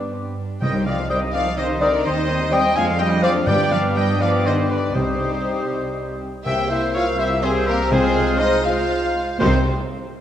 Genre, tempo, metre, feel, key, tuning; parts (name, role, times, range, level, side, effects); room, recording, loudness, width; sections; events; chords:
quick classical-period movement for symphony orchestra; 82 BPM (dotted quarters); 6/8; rubato; C minor; A4 = 440 Hz
mellow hollow concert flute; second line; 0.0-9.7 s; C6 to F6; -30 LUFS; left 2 dB
warm clarinet; second line; 0.0-9.6 s; B4 to C5; -30 LUFS; left 2 dB
warm studio violin section; second line; 0.0-9.7 s; C4 to E5; -29 LUFS; left 4 dB
mellow bassoon; accompaniment; 0.0-9.6 s; Eb3 to Bb3; -29 LUFS; right 2 dB
rich studio viola section; accompaniment; 0.0-9.7 s; D3 to G4; -29 LUFS; right 2 dB
warm French horn section; sustained chords; 0.0-9.6 s; Bb3 to G4; -26 LUFS; left 2 dB
warm studio double bass section; bass; 0.0-9.7 s; C2 to G2; -27 LUFS; right 2 dB
dark studio violin section; melody; 0.6-9.7 s; Bb4 to Ab5; -26 LUFS; left 4 dB
bright oboe; second line; 0.6-9.6 s; G4 to Ab5; -29 LUFS; right 1 dB
dark trumpet section; stabs; 0.6-9.6 s; G4 to G5; -26 LUFS; right 1 dB
warm chamber cello section; bass; 0.6-9.7 s; C3 to Ab3; -28 LUFS; right 2 dB
timpani; percussion; 0.6-9.6 s; G2 to C3; -27 LUFS; equal
wet concert hall reverb, RT60 2.2 s; dark, warm production; -17 LUFS; side -10 dB against mid
0.0-6.5 A section; 6.5-9.4 B section
0.0 G; 0.6 Cm; 2.0 Cm/Eb; 2.8 Dm7b5/F; 3.5 G; 4.2 G7; 5.0 Cm; 6.5 C7; 7.9 Fm/C; 9.4 Cm